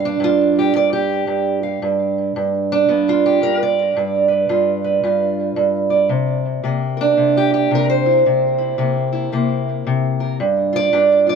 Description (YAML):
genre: acoustic country blues, solo or duo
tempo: 112 BPM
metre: 4/4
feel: swing 62% on 8ths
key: unclear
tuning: A4 = 440 Hz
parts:
  - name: fingerpicked steel-string acoustic guitar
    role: solo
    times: 0.0-11.4 s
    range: G2 to F5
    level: -15 LUFS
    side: right 2 dB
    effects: tape echo
room: moderate studio reverb, RT60 0.6 s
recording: none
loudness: -15 LUFS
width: side -6 dB against mid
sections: 0.0-11.4 A section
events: none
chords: 0.0 G7; 6.1 C7; 10.4 G7(no3)